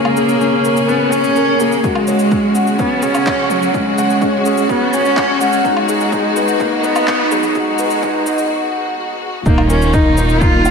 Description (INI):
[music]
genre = piano and strings electronica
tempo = 126 BPM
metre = 4/4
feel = straight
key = Eb minor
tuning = A4 = 440 Hz
[part]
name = warm cello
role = melody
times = 0.0-10.7 s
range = Gb3 to F4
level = -17 LUFS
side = equal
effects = analog delay
[part]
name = clear symphonic string section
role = sustained chords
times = 0.0-10.7 s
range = Cb3 to Ab4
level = -21 LUFS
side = left 2 dB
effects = sidechain pumping, low-pass filter
[part]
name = felt-muted upright piano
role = riff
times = 0.0-10.7 s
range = Db4 to Gb5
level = -17 LUFS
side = left 1 dB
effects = lush chorus, analog delay
[part]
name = electronic woodblock, shaker and handclaps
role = drums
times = 0.1-10.7 s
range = none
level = -25 LUFS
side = left 1 dB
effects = overdrive
[part]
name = electronic kick drum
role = drums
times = 1.8-10.5 s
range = none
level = -19 LUFS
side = equal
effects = overdrive
[part]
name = dark detuned saw bass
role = bass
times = 9.5-10.7 s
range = Eb1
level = -16 LUFS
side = equal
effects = sidechain pumping
[sound]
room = wet lush hall reverb, RT60 1.9 s, small room ambience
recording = dreamy mix soaked in reverb, high-pass filter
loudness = -12 LUFS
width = side -5 dB against mid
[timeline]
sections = 0.0-9.5 A section; 9.5-10.7 B section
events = build-up 0.0-9.5; break 8.5-9.5; drop 9.5-10.7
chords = 0.0 Bbm7; 1.8 Dbsus4; 5.6 Abm7; 9.5 Ebsus2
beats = 0.41 0.89 1.36 | 1.84 2.32 2.79 3.27 | 3.74 4.22 4.70 5.17 | 5.65 6.12 6.60 7.08 | 7.55 8.03 8.51 8.98 | 9.46 9.94 10.41